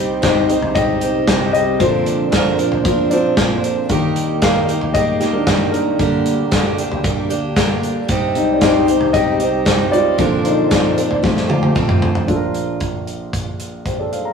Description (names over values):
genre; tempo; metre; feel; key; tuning
piano-driven pop; 114 BPM; 4/4; straight; Bb major; A4 = 439 Hz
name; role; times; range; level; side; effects
lush unison pad; sustained chords; 0.0-12.3 s; C2 to D5; -25 LUFS; equal; chorus
picked steel-string acoustic guitar; riff; 0.0-12.8 s; Bb2 to Bb4; -19 LUFS; right 4 dB; none
dark upright piano; accompaniment; 0.2-14.3 s; Bb1 to Bb5; -18 LUFS; left 2 dB; none
modern studio drum kit; drums; 0.2-14.2 s; hi-hat, kick drum, snare drum, toms; -19 LUFS; equal; none
room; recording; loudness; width
moderate stone room reverb, RT60 1.1 s; rough rehearsal-room recording, studio ambience; -14 LUFS; side -6 dB against mid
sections
0.0-12.3 A section; 12.3-14.3 B section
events
upright piano solo 0.0-12.3; drum fill 11.2-12.3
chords
0.0 Cm; 1.8 Bbadd9; 3.9 Eb; 6.0 Gm/D; 8.1 Cm; 10.2 Bbadd9; 11.2 Fadd9; 12.3 Bb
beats
0.23 0.75 1.28 | 1.80 2.33 2.85 3.38 | 3.90 4.42 4.95 5.47 | 6.00 6.52 7.04 7.57 | 8.09 8.62 9.14 9.66 | 10.19 10.71 11.24 11.76 | 12.29 12.81 13.33 13.86